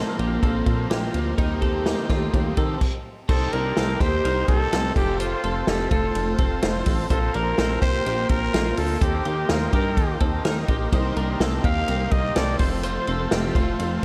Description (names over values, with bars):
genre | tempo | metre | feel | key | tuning
jangly indie pop | 126 BPM | 4/4 | straight | C dorian | A4 = 440 Hz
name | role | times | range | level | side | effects
combo organ | accompaniment | 0.0-14.0 s | Bb3 to C5 | -35 LUFS | equal | slapback echo
overdriven electric guitar | accompaniment | 0.0-2.8, 10.9-14.0 s | F2 to Bb4 | -34 LUFS | equal | slapback echo
phased analog pad | sustained chords | 0.0-14.0 s | Bb3 to C6 | -36 LUFS | equal | none
twelve-string electric guitar | arpeggios | 0.0-14.0 s | A3 to C5 | -32 LUFS | equal | analog chorus, slapback echo
plucky analog bass | bass | 0.0-14.0 s | F1 to Eb3 | -29 LUFS | equal | none
vintage drum kit | drums | 0.2-13.9 s | crash cymbal, hi-hat, kick drum, ride cymbal, snare drum | -26 LUFS | equal | none
growling trumpet | melody | 3.3-13.3 s | F4 to F5 | -30 LUFS | equal | slapback echo
room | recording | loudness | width
moderate concert hall reverb, RT60 1.9 s, studio reverb | big arena sound | -23 LUFS | mono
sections
0.0-3.3 A section; 3.3-14.0 B section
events
stop 2.8-3.3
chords
0.0 Bbsus2; 1.4 Eb6; 3.3 Cm7; 5.0 F; 7.1 Bbsus2; 9.0 Eb6; 10.9 Cm7; 12.6 F